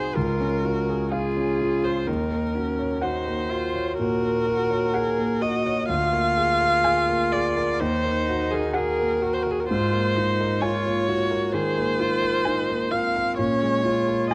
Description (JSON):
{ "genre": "classical, slow romantic movement for piano quartet", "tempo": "63 BPM", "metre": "4/4", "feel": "rubato", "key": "unclear", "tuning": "A4 = 438 Hz", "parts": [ { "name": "muted cello", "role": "second line", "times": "0.0-14.3 s", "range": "C4 to Ab4", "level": "-31 LUFS", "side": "equal", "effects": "none" }, { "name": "muted viola", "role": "accompaniment", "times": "0.0-14.3 s", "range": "Ab4 to F5", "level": "-27 LUFS", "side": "equal", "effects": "none" }, { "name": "warm concert grand piano", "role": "accompaniment", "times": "0.0-14.3 s", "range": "C2 to Db5", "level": "-28 LUFS", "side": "equal", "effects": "none" }, { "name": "muted violin", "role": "melody", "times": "1.1-14.3 s", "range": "F5 to Ab5", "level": "-34 LUFS", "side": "equal", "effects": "none" } ], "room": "light reverb", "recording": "close, detailed microphones, vinyl crackle", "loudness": "-24 LUFS", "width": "mono", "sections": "0.0-14.3 A section", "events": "none", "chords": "0.2 Db; 2.1 Ebm7; 5.9 Bb7/D; 7.8 Ebm; 9.7 Ab69; 13.4 Bbm7", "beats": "0.16 1.12 | 2.08 3.03 3.98 4.93 | 5.88 6.84 7.80 8.74 | 9.69 10.62 11.53 12.45 | 13.38 14.32" }